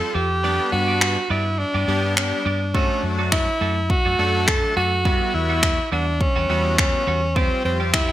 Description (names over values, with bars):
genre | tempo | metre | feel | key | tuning
dance-pop | 104 BPM | 4/4 | straight | D major | A4 = 435 Hz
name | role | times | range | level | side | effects
edgy alto saxophone | melody | 0.0-8.1 s | C4 to A4 | -22 LUFS | equal | none
big bright polysynth | accompaniment | 0.0-8.1 s | F#3 to B4 | -28 LUFS | left 2 dB | chorus, sidechain pumping
twelve-string electric guitar | riff | 0.0-8.1 s | G3 to G4 | -29 LUFS | right 5 dB | wide subtle chorus
vintage muted fingered electric bass | bass | 0.1-8.1 s | E2 to G2 | -24 LUFS | equal | sidechain pumping
pop drum kit | drums | 1.0-8.1 s | finger snaps, kick drum | -21 LUFS | equal | gated reverb
room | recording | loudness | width
light reverb | bright 1980s-style digital production | -18 LUFS | side -13 dB against mid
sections
0.0-8.1 A section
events
none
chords
0.4 G; 2.7 D/F#; 5.1 Emadd9; 7.4 Fsus2